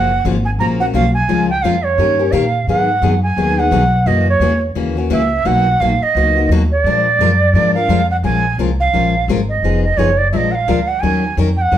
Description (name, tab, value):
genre	acoustic string swing (jazz manouche)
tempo	172 BPM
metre	4/4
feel	swing 60% on 8ths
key	Bb minor from 8.2 s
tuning	A4 = 439 Hz
part	bright reedy bansuri	melody	0.0-11.8 s	Db5 to Bb5	-16 LUFS	right 4 dB	none
part	picked steel-string acoustic guitar	accompaniment	0.0-11.8 s	B2 to Bb4	-18 LUFS	left 4 dB	none
part	upright bass	bass	0.0-11.8 s	F1 to Bb2	-17 LUFS	equal	none
room	wet studio reverb, RT60 0.6 s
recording	heard from further back in the room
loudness	-12 LUFS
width	side -11 dB against mid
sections	0.0-8.2 A section; 8.2-11.8 B section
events	none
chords	0.0 Gbmaj7; 1.3 Bbm7; 2.0 Eb7; 2.7 Abm7; 4.1 Gb7; 5.5 Bmaj7; 6.8 Bb7; 8.2 Bbm7; 9.6 Fm7b5; 10.3 Bb7; 11.0 Ebm7